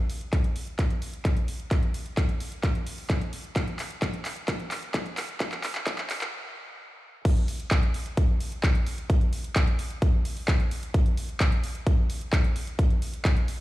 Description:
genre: EDM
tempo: 130 BPM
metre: 4/4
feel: straight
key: none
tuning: none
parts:
  - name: big-room dance drum kit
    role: drums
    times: 0.1-13.6 s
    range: crash cymbal, handclaps, hi-hat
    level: -33 LUFS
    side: equal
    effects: overdrive
  - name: electronic kick drum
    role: drums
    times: 0.3-13.3 s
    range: none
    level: -24 LUFS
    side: equal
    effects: overdrive
room: little or no reverb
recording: played on a big sound system in a bare room, large studio reverb, high-pass filter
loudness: -24 LUFS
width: side -17 dB against mid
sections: 0.0-7.2 A section; 7.2-13.6 B section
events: build-up 0.0-7.2; drum fill 0.0-6.3; filter sweep 0.0-7.2; stop 6.3-7.2; drop 7.2-13.6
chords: none

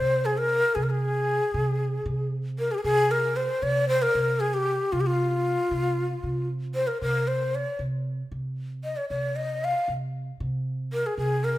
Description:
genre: Arabic maqam ensemble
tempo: 115 BPM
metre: 4/4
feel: straight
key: C maqam bayati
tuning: A4 = 441 Hz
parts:
  - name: breathy ney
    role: melody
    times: 0.0-11.6 s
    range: F4 to F5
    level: -25 LUFS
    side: left 1 dB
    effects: none
  - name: upright bass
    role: bass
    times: 0.0-11.6 s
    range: C3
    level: -29 LUFS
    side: right 1 dB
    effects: none
room: moderate recital hall reverb, RT60 1.5 s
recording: minimal, uncompressed stereo recording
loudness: -24 LUFS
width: side -15 dB against mid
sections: 0.0-11.6 A section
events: none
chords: none

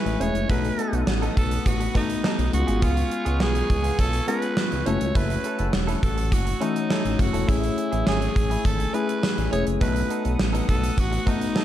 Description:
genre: 1980s-style pop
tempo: 103 BPM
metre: 4/4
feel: straight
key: F# dorian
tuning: A4 = 438 Hz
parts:
  - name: raspy alto saxophone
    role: melody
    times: 0.0-11.6 s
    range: D#4 to C#5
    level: -29 LUFS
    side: right 2 dB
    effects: tape echo
  - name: barky tine electric piano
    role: accompaniment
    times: 0.0-11.6 s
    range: E3 to G#4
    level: -28 LUFS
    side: left 6 dB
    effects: overdrive
  - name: chorused pulse-width pad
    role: sustained chords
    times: 0.0-11.6 s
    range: B4 to E6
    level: -37 LUFS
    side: left 1 dB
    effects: none
  - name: direct-recorded clean electric guitar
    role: riff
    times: 0.1-11.6 s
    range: B3 to A4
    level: -34 LUFS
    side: right 5 dB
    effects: lush chorus, tape echo
  - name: smooth gliding synth bass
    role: bass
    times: 0.1-11.2 s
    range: E1 to C#2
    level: -25 LUFS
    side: equal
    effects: none
  - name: gated 80s drum kit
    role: drums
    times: 0.1-11.6 s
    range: hi-hat, kick drum, snare drum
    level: -25 LUFS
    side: right 1 dB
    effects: none
room: light reverb, small room ambience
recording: dark, warm production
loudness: -21 LUFS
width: side -12 dB against mid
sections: 0.0-11.6 A section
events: none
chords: 0.5 B7; 2.5 C#7; 4.9 F#m7; 7.5 Amaj7; 9.8 B7

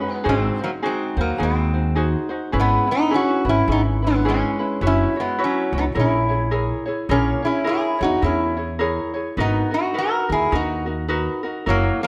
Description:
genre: Hawaiian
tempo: 105 BPM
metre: 4/4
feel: swing 60% on 8ths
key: unclear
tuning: A4 = 441 Hz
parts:
  - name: metal-body resonator slide guitar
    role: melody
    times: 0.0-12.1 s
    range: F#3 to A#4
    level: -23 LUFS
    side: equal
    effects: none
  - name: ukulele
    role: accompaniment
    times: 0.0-12.1 s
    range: C#4 to C#5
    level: -27 LUFS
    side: equal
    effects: none
  - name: upright bass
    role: bass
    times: 0.3-11.9 s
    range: F#1 to E2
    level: -25 LUFS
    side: equal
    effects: none
room: moderate recital hall reverb, RT60 1.4 s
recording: dark, warm production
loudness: -21 LUFS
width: mono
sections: 0.0-12.1 A section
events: none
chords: 0.3 G#7; 2.5 C#m7/G#; 4.8 F#7sus4; 6.0 A#m7b5; 9.4 G#m9 (rootless)

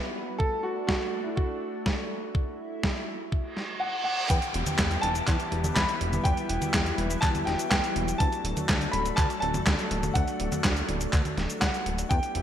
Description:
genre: italo disco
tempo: 123 BPM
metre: 4/4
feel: straight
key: unclear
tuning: A4 = 440 Hz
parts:
  - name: lush unison pad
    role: sustained chords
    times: 0.0-12.4 s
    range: E3 to B4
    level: -34 LUFS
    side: left 1 dB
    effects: chorus
  - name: warm grand piano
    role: melody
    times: 0.4-12.4 s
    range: E4 to B5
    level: -31 LUFS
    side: equal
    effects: ping-pong delay
  - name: electronic kick drum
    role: drums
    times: 0.4-12.2 s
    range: none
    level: -27 LUFS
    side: equal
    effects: small room ambience
  - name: dusty soul sampler-style drum kit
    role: drums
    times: 0.9-12.4 s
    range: cabasa, congas, handclaps, hi-hat, snare drum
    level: -29 LUFS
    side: equal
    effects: overdrive, small room ambience, gated reverb
  - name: reverse cymbal and downlifter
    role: sound effects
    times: 3.5-8.2 s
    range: none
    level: -35 LUFS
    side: right 2 dB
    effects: none
  - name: chorused synth bass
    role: bass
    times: 4.3-12.4 s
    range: D1 to E2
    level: -31 LUFS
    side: equal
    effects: none
room: moderate lush hall reverb, RT60 2.1 s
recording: bright 1980s-style digital production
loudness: -25 LUFS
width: side -10 dB against mid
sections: 0.0-4.3 A section; 4.3-12.4 B section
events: reverse cymbal 3.5-4.3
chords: 0.4 D; 4.3 Emadd9; 8.2 D

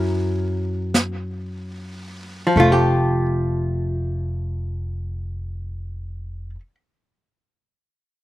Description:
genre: jazz ballad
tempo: 35-41 BPM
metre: 4/4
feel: swing 66% on 8ths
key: F major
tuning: A4 = 440 Hz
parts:
  - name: archtop guitar, miked and amplified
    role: accompaniment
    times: 0.0-6.7 s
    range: F3 to Bb4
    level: -21 LUFS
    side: equal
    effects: none
  - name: upright bass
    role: bass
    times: 0.0-6.5 s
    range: F1 to Gb2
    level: -24 LUFS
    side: equal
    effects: none
  - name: jazz brush drum kit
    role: drums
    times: 0.9-3.3 s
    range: brushed snare drum, hi-hat, snare drum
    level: -24 LUFS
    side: right 1 dB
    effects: none
room: little or no reverb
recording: recorded outdoors, with no room sound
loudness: -20 LUFS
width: side -16 dB against mid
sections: 0.0-2.5 A section; 2.5-8.2 B section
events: slowing down 0.0-2.5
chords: 0.0 Gb7; 2.5 Fadd9

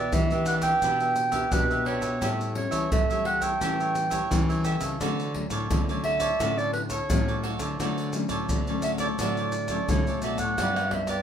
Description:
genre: samba and choro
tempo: 86 BPM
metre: 4/4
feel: straight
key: D major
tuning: A4 = 435 Hz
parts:
  - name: warm clarinet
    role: melody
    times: 0.0-11.2 s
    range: B4 to G5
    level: -27 LUFS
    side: right 2 dB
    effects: none
  - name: cavaquinho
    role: accompaniment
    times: 0.0-11.2 s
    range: D4 to E5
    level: -32 LUFS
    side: right 4 dB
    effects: none
  - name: nylon-string guitar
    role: accompaniment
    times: 0.0-11.2 s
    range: G2 to G4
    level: -33 LUFS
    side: left 4 dB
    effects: none
  - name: nylon-string guitar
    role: bass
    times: 0.0-11.2 s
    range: G2 to A3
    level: -31 LUFS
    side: left 1 dB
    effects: none
  - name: maracas, surdo, pandeiro and tamborim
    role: percussion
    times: 0.1-11.2 s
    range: none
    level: -30 LUFS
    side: equal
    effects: none
room: moderate studio reverb, RT60 0.5 s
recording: minimal, uncompressed stereo recording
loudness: -24 LUFS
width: side -9 dB against mid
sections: 0.0-10.6 A section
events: none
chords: 0.0 Em7; 2.2 A7; 5.0 Dmaj7; 10.6 Gmaj7

